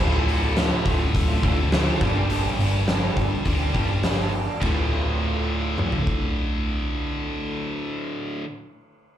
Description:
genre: quiet-loud alternative rock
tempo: 103 BPM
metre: 4/4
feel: straight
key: D minor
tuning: A4 = 440 Hz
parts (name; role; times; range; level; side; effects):
- electric guitar through a small old amp; arpeggios; 0.0-8.5 s; D2 to G4; -30 LUFS; right 2 dB; analog chorus, tape echo, slapback echo
- tight distorted guitar; riff; 0.0-8.5 s; D2 to G3; -27 LUFS; equal; distortion, slapback echo
- hollow-body short-scale picked electric bass; bass; 0.0-8.4 s; D1 to D2; -25 LUFS; equal; none
- oversized low-tuned drum kit; drums; 0.3-6.2 s; hi-hat, kick drum, ride cymbal, snare drum, toms; -25 LUFS; equal; none
room: light reverb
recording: live gig heard through the venue's PA, club reverb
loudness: -21 LUFS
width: side -11 dB against mid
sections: 0.0-4.6 A section; 4.6-6.9 B section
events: none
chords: 0.0 Dm; 2.0 Gm; 4.6 Dm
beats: 0.56 1.14 1.72 | 2.30 2.88 3.46 4.04 | 4.62 5.20 5.78 6.37

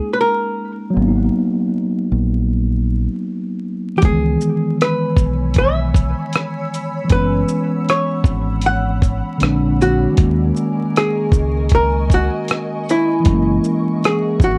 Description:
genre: lo-fi hip hop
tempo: 78 BPM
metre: 4/4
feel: swing 58% on 16ths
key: unclear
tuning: A4 = 441 Hz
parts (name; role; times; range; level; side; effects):
- archtop guitar, miked and amplified; melody; 0.0-14.6 s; E4 to F#5; -22 LUFS; equal; plate reverb
- mellow tine electric piano; accompaniment; 0.0-14.6 s; D3 to D#4; -22 LUFS; equal; cassette tape
- deep dub fingered electric bass; bass; 1.0-14.6 s; F#1 to D#2; -21 LUFS; equal; none
- granular cloud pad; sustained chords; 5.0-14.6 s; A#4 to E6; -32 LUFS; equal; built-in reverb
- dusty soul sampler-style drum kit; drums; 4.0-14.6 s; hi-hat, kick drum, rim click, shaker; -18 LUFS; equal; none
room: moderate studio reverb, RT60 0.5 s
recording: dark, warm production, vinyl crackle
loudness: -17 LUFS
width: mono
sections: 0.0-14.6 A section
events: none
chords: 0.0 D#7sus4; 1.0 G#m9 (rootless); 4.0 C#m7; 7.1 F#7sus4; 9.4 A#7; 10.2 D#7sus4; 13.3 F#7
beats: 0.18 | 0.95 1.72 2.49 3.26 | 4.03 4.80 5.57 6.34 | 7.11 7.88 8.64 9.41 | 10.18 10.95 11.72 12.49 | 13.26 14.03

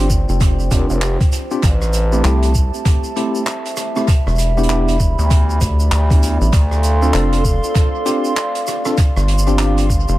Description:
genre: glitch hop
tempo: 98 BPM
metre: 4/4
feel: swing 61% on 16ths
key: D dorian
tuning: A4 = 440 Hz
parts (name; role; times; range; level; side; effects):
- dark analog pad; sustained chords; 0.0-10.2 s; F4 to C6; -24 LUFS; right 2 dB; lush chorus, sidechain pumping
- tine electric piano; stabs; 0.0-9.8 s; A3 to A4; -22 LUFS; left 1 dB; fast stereo tremolo, sidechain pumping, tape echo
- rubbery square bass; bass; 0.0-10.2 s; E1 to D2; -16 LUFS; equal; none
- downlifter; sound effects; 1.4-1.6 s; none; barely audible; none; none
- electronic kick drum; drums; 0.1-10.0 s; none; -15 LUFS; equal; none
- loose indie drum kit; drums; 0.1-10.2 s; handclaps, hi-hat, rim click, shaker; -25 LUFS; right 1 dB; tape echo
- gritty driven synth bass; bass; 0.7-7.1 s; F1 to D2; -16 LUFS; equal; none
room: light reverb, studio reverb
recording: echo-heavy mix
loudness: -13 LUFS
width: side -16 dB against mid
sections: 0.0-10.2 A section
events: none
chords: 0.0 G7sus4; 1.6 Am7; 4.1 Em7; 6.5 Dm7; 9.0 G7sus4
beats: 0.41 1.02 | 1.63 2.24 2.86 3.47 | 4.08 4.69 5.30 5.92 | 6.53 7.14 7.75 8.37 | 8.98 9.59

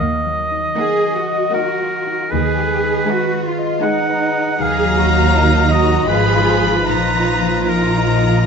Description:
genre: classical, slow romantic movement for symphony orchestra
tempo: 67-81 BPM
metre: 3/4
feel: rubato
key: Eb minor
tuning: A4 = 440 Hz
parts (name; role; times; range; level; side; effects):
- clear oboe; second line; 0.0-8.5 s; Bb4 to Gb5; -19 LUFS; right 1 dB; none
- concert harp; arpeggios; 0.0-8.5 s; Ab2 to Eb5; -22 LUFS; left 4 dB; none
- dark studio double bass section; bass; 0.0-8.5 s; Ab1 to Eb2; -19 LUFS; right 2 dB; none
- rich studio violin section; melody; 0.8-8.5 s; Gb5 to Cb6; -24 LUFS; left 4 dB; none
- rich studio violin section; second line; 0.8-8.5 s; Eb4 to F4; -25 LUFS; left 3 dB; none
- warm studio viola section; accompaniment; 0.8-8.5 s; F3 to Bb3; -23 LUFS; right 4 dB; none
- warm studio cello section; bass; 0.8-8.5 s; Eb4 to Ab4; -21 LUFS; right 2 dB; none
room: moderate recital hall reverb, RT60 1.6 s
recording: nothing above 7.8 kHz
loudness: -14 LUFS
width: side -6 dB against mid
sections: 0.0-8.5 A section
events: none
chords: 0.0 Ebm; 2.3 Abm/Eb; 4.6 Ebm; 6.1 Fdim/Ab; 6.9 Bbsus4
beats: 0.77 1.54 | 2.32 3.08 3.84 | 4.60 5.34 6.09 | 6.87 7.68

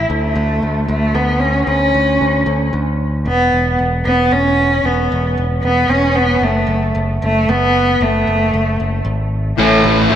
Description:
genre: post-rock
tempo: 114 BPM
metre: 3/4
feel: straight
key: unclear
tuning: A4 = 440 Hz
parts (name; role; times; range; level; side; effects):
- modern bright picked electric bass; bass; 0.0-10.2 s; E1 to D2; -18 LUFS; equal; none
- rich cello; melody; 0.1-10.1 s; A2 to C#4; -15 LUFS; equal; analog delay
- fuzz guitar; riff; 9.6-10.2 s; A2 to E4; -12 LUFS; left 1 dB; distortion
room: wet lush hall reverb, RT60 2.5 s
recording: dreamy mix soaked in reverb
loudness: -13 LUFS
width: side -10 dB against mid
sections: 0.0-9.6 A section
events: none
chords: 0.1 D5; 3.3 E5; 6.4 F#m; 9.6 A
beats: | 0.10 0.63 1.15 | 1.68 2.21 2.73 | 3.26 3.78 4.31 | 4.84 5.36 5.89 | 6.42 6.94 7.47 | 8.00 8.52 9.05 | 9.58 10.10

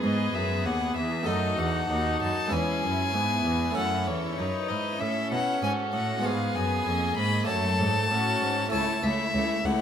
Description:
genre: classical, baroque-style concerto movement with solo episodes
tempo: 97 BPM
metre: 4/4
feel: straight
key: unclear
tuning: A4 = 442 Hz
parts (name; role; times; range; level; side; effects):
- clear symphonic violin section; melody; 0.0-9.8 s; G#4 to D#5; -39 LUFS; left 2 dB; none
- clear violin; melody; 0.0-9.8 s; C#5 to Cb6; -29 LUFS; left 2 dB; none
- rich chamber violin section; second line; 0.0-9.8 s; E4 to A4; -34 LUFS; left 1 dB; none
- harpsichord; accompaniment; 0.0-9.8 s; C#2 to C#5; -32 LUFS; right 2 dB; none
- rich chamber viola section; accompaniment; 0.0-9.8 s; A3 to D#4; -32 LUFS; left 1 dB; none
- clear chamber cello section; bass; 0.0-9.7 s; C#2 to B2; -31 LUFS; right 1 dB; none
room: moderate recital hall reverb, RT60 1.6 s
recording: close, detailed microphones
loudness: -24 LUFS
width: side -8 dB against mid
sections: 0.0-9.8 A section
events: none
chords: 0.0 E; 1.3 D#dim; 2.5 E; 3.8 F#m; 6.2 Fdim; 7.5 F#m; 8.7 A/C#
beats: 0.03 0.65 | 1.27 1.90 2.52 3.14 | 3.77 4.39 5.01 5.63 | 6.25 6.87 7.49 8.11 | 8.73 9.35

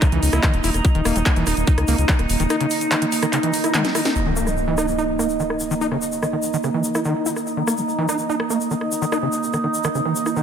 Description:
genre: psychedelic trance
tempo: 145 BPM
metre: 4/4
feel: straight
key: unclear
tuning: A4 = 440 Hz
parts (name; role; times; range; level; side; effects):
- overtone-sweeping drone; sustained chords; 0.0-10.4 s; Eb4; -27 LUFS; right 2 dB; chorus, built-in reverb, sidechain pumping
- overdriven acid bass; riff; 0.0-10.4 s; Db3 to Fb4; -24 LUFS; moving between left 6 dB and right 6 dB; distortion, auto-pan, vintage 12-bit sampler grit, sidechain pumping, digital delay
- drum and bass drum kit; drums; 0.0-10.3 s; crash cymbal, handclaps, hi-hat, rim click, snare drum, toms; -25 LUFS; equal; overdrive, low-pass filter on hats, low-pass filter on snare, low-pass filter on toms, low-pass filter on cymbals
- electronic kick drum; drums; 0.0-2.2 s; none; -17 LUFS; equal; none
- tube shaker; percussion; 0.0-10.4 s; none; -30 LUFS; left 3 dB; none
- airy breathy pad; texture; 0.0-10.4 s; Bb3 to Bb5; -24 LUFS; right 1 dB; chorus, sidechain pumping
- round analog bass; bass; 0.1-2.5 s; Eb1 to Db2; -21 LUFS; equal; tube saturation
- impact; sound effects; 4.2-5.8 s; none; -27 LUFS; equal; none
room: moderate lush hall reverb, RT60 1.9 s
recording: none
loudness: -18 LUFS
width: side -8 dB against mid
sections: 0.0-4.2 A section; 4.2-10.4 B section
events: kick drops out 2.5-4.2; drum fill 3.7-4.2; impact 4.2-5.8; filter sweep on synth drone 4.2-10.4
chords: 0.0 Eb5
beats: 0.02 0.43 | 0.85 1.26 1.67 2.09 | 2.50 2.92 3.33 3.74 | 4.16 4.57 4.98 5.40 | 5.81 6.23 6.64 7.05 | 7.47 7.88 8.29 8.71 | 9.12 9.54 9.95 10.36

